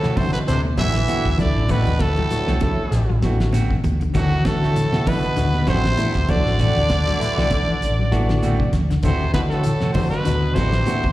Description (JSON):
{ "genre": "afrobeat", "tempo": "98 BPM", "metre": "4/4", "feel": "swing 56% on 16ths", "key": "D mixolydian", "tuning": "A4 = 440 Hz", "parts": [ { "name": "growling trumpet", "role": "melody", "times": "0.0-11.1 s", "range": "F#4 to E5", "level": "-25 LUFS", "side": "right 1 dB", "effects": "plate reverb, slapback echo" }, { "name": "breathy alto saxophone", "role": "second line", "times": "0.0-11.1 s", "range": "F#3 to E4", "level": "-32 LUFS", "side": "right 1 dB", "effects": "none" }, { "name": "bright trombone section", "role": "second line", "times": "0.0-11.1 s", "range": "F#2 to E3", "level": "-30 LUFS", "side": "left 1 dB", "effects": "plate reverb, slapback echo" }, { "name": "semi-hollow electric guitar", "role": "arpeggios", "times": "0.0-11.1 s", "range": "C3 to F#3", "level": "-26 LUFS", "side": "left 3 dB", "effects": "tremolo, slapback echo" }, { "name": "clean electric guitar", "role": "stabs", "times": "0.0-11.1 s", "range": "E3 to F#4", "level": "-30 LUFS", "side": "right 6 dB", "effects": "plate reverb, slapback echo" }, { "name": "hollow-body short-scale fingered electric bass", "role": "bass", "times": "0.0-11.1 s", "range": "A1 to D3", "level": "-21 LUFS", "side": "equal", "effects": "none" }, { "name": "damped 70s drum kit", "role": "drums", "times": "0.0-11.1 s", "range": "hi-hat, kick drum, snare drum", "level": "-26 LUFS", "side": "equal", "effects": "none" }, { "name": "barky tine electric piano", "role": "accompaniment", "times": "0.2-11.0 s", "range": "E3 to A4", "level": "-29 LUFS", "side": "left 2 dB", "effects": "overdrive, plate reverb, slapback echo" }, { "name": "congas", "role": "percussion", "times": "0.2-11.0 s", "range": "none", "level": "-27 LUFS", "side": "right 2 dB", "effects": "slapback echo" }, { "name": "shekere", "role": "percussion", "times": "0.2-11.1 s", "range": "none", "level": "-31 LUFS", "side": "equal", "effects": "none" } ], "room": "light reverb", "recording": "live gig heard through the venue's PA, recital hall reverb", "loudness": "-17 LUFS", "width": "side -16 dB against mid", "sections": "0.0-11.1 A section", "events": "none", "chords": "0.0 D9" }